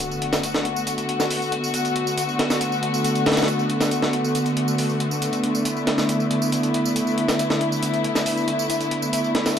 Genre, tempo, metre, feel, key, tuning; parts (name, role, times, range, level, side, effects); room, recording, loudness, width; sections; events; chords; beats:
breakbeat, breaks; 138 BPM; 4/4; straight; B minor; A4 = 440 Hz
muted studio string section; sustained chords; 0.0-9.6 s; D3 to F#4; -21 LUFS; left 1 dB
breakbeat sampler-style drum kit; drums; 0.0-9.6 s; hi-hat, snare drum; -25 LUFS; equal; high-pass filter on kick, studio reverb, high-pass filter on hats, high-pass filter on snare
tambourine; drums; 0.0-9.6 s; -32 LUFS; right 5 dB; overdrive, studio reverb
impact and riser; sound effects; 0.0-0.4, 9.6 s; -44 LUFS; equal
light reverb; -20 LUFS; side -8 dB against mid
0.0-9.6 A section
impact 0.0-0.4
0.0 Bm7
0.00 | 0.44 0.87 1.31 1.74 | 2.18 2.61 3.05 3.48 | 3.92 4.35 4.79 5.22 | 5.66 6.09 6.53 6.96 | 7.39 7.83 8.26 8.70 | 9.13 9.57